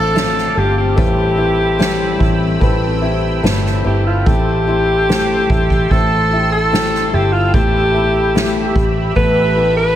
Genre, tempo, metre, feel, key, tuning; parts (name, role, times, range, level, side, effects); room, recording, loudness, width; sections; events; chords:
pop ballad; 73 BPM; 4/4; straight; A minor; A4 = 440 Hz
warm alto saxophone; melody; 0.0-10.0 s; F4 to B4; -17 LUFS; equal
clear concert grand piano; accompaniment; 0.0-10.0 s; A3 to E4; -24 LUFS; equal
sweeping resonant pad; sustained chords; 0.0-10.0 s; C4 to E6; -25 LUFS; equal; chorus
nylon-string guitar; arpeggios; 0.0-10.0 s; A2 to B4; -24 LUFS; left 7 dB; tape echo
vintage muted fingered electric bass; bass; 0.0-9.9 s; G1 to A1; -18 LUFS; equal
soft-mallet drum kit; drums; 0.2-9.8 s; kick drum, ride cymbal, snare drum; -19 LUFS; right 1 dB
mellow French horn section; second line; 2.2-10.0 s; G4 to B4; -24 LUFS; left 1 dB; tape echo
small room ambience; -12 LUFS; side -11 dB against mid
0.0-10.0 A section
0.0 Dm7/A; 1.0 Cmaj7/A; 4.3 Am7; 7.5 Em/A